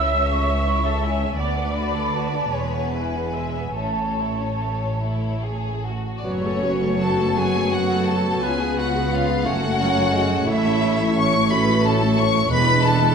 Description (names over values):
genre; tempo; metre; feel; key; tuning
classical, slow romantic movement for symphony orchestra; 46-61 BPM (dotted quarters); 6/8; rubato; A major, F# minor from 6.2 s; A4 = 441 Hz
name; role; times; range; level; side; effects
warm symphonic violin section; melody; 0.0-13.1 s; A4 to C#6; -26 LUFS; left 3 dB; none
bright large flute ensemble; second line; 0.0-13.1 s; C#5 to E6; -28 LUFS; right 1 dB; none
warm symphonic violin section; second line; 0.0-13.1 s; G#3 to C#5; -29 LUFS; left 4 dB; none
warm symphonic viola section; accompaniment; 0.0-13.1 s; E3 to E5; -28 LUFS; equal; none
clear symphonic cello section; bass; 0.0-13.1 s; C#2 to A2; -27 LUFS; right 3 dB; none
rich studio double bass section; bass; 0.0-13.1 s; E1 to D2; -26 LUFS; right 2 dB; none
clear oboe; second line; 6.2-13.1 s; B4 to C#5; -32 LUFS; right 1 dB; none
warm clarinet; second line; 6.2-13.1 s; C#4 to F#4; -31 LUFS; equal; none
warm bassoon; accompaniment; 6.2-13.1 s; F#3 to B3; -30 LUFS; equal; none
mellow French horn section; sustained chords; 6.2-13.1 s; G#3 to F#4; -26 LUFS; left 3 dB; none
timpani; percussion; 10.5-13.1 s; E2 to A2; -28 LUFS; right 2 dB; none
room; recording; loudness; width
wet scoring stage reverb, RT60 1.7 s; none; -19 LUFS; side -6 dB against mid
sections
0.0-6.2 A section; 6.2-13.1 B section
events
none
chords
0.0 A/C#; 1.4 Bm7/D; 2.5 E; 3.8 A; 6.2 F#m; 8.4 C#7; 9.5 F#m; 10.5 A; 12.5 E7